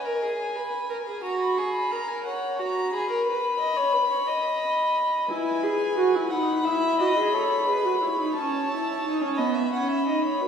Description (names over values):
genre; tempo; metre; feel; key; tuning
classical, baroque-style fugue for string quartet; 59 BPM (dotted quarters); 12/8; straight; E major; A4 = 440 Hz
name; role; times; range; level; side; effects
warm violin; melody; 0.0-10.5 s; F#5 to C#6; -27 LUFS; left 2 dB; none
warm violin; second line; 0.0-10.5 s; F#4 to F#5; -28 LUFS; right 1 dB; none
warm viola; accompaniment; 5.3-10.5 s; B3 to A4; -24 LUFS; right 2 dB; none
room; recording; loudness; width
wet concert hall reverb, RT60 2.1 s; heard from further back in the room, studio ambience; -22 LUFS; side -7 dB against mid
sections
0.0-10.5 A section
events
none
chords
0.0 E (rootless); 1.2 F#; 3.3 B; 5.3 E; 7.3 A; 9.4 B